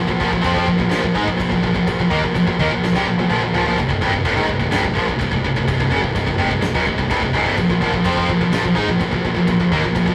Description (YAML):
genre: heavy metal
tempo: 126 BPM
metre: 4/4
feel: straight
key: unclear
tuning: A4 = 440 Hz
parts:
  - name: heavy high-gain guitar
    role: riff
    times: 0.0-10.1 s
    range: C2 to Eb4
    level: -21 LUFS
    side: equal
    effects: distortion
  - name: tight distorted guitar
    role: riff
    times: 0.0-10.1 s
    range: C2 to Eb4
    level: -25 LUFS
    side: equal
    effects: distortion
  - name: growling picked electric bass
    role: bass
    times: 0.0-10.1 s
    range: C1 to Ab2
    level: -27 LUFS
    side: equal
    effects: overdrive
  - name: big rock drum kit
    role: drums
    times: 0.1-10.1 s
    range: crash cymbal, kick drum, snare drum, toms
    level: -27 LUFS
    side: equal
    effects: none
room: wet booth ambience, RT60 0.2 s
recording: rough rehearsal-room recording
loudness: -18 LUFS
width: mono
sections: 0.0-10.1 A section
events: drum fill 2.8-3.8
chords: 0.0 Bb5; 3.8 Cm; 7.6 Bb5